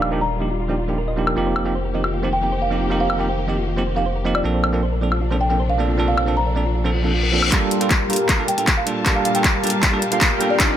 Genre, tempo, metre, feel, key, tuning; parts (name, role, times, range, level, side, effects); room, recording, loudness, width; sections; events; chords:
future bass; 156 BPM; 4/4; half-time; G minor; A4 = 440 Hz
folk marimba with soft mallets; melody; 0.0-10.6 s; D5 to Bb5; -25 LUFS; right 1 dB; sidechain pumping, low-pass filter, digital delay
bell-like tine electric piano; accompaniment; 0.0-10.8 s; F3 to Bb4; -24 LUFS; right 3 dB; sidechain pumping, ping-pong delay
warm studio string section; sustained chords; 0.0-10.8 s; Bb2 to A5; -30 LUFS; left 3 dB; sidechain pumping, low-pass filter
thumb-piano-like synth pluck; arpeggios; 0.0-7.5 s; F4 to Eb5; -29 LUFS; right 1 dB; chorus, sidechain pumping, ping-pong delay
saturated sub bass; bass; 0.0-7.5 s; Eb1 to Bb1; -23 LUFS; left 1 dB; sidechain pumping
trap drum kit; drums; 0.0-10.7 s; handclaps, hi-hat, woodblock; -21 LUFS; left 1 dB
reverse cymbal and riser; sound effects; 6.9-10.8 s; -27 LUFS; left 5 dB
soft supersaw; riff; 7.5-10.8 s; G3 to C6; -22 LUFS; equal; sidechain pumping, low-pass filter
electronic kick drum; drums; 7.5-10.7 s; -20 LUFS; left 1 dB; overdrive
light reverb; low-pass filter; -17 LUFS; side -10 dB against mid
0.0-7.5 A section; 7.5-10.8 B section
filter sweep 0.0-7.5; reverse cymbal 6.9-7.5; build-up 7.5-10.8; drum fill 7.5-10.8; filter sweep on supersaw synth 7.5-10.8; filter sweep on marimba 7.5-10.8
0.0 Ebmaj9; 1.4 F9sus4; 4.4 Bbmaj9; 7.5 Gm9